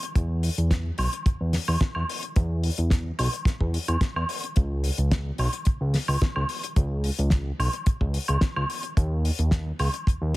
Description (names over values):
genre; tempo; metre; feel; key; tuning
nu-disco, nu disco; 109 BPM; 4/4; straight; unclear; A4 = 444 Hz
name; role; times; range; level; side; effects
damped 70s drum kit; drums; 0.0-10.4 s; hi-hat, snare drum, woodblock; -29 LUFS; equal; none
fat analog bass; bass; 0.2-10.4 s; B1 to E2; -25 LUFS; equal; sidechain pumping
kick drum; drums; 0.2-10.2 s; none; -22 LUFS; equal; none
room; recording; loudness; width
little or no reverb; heavily compressed radio sound; -23 LUFS; side -19 dB against mid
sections
0.0-10.4 A section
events
none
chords
none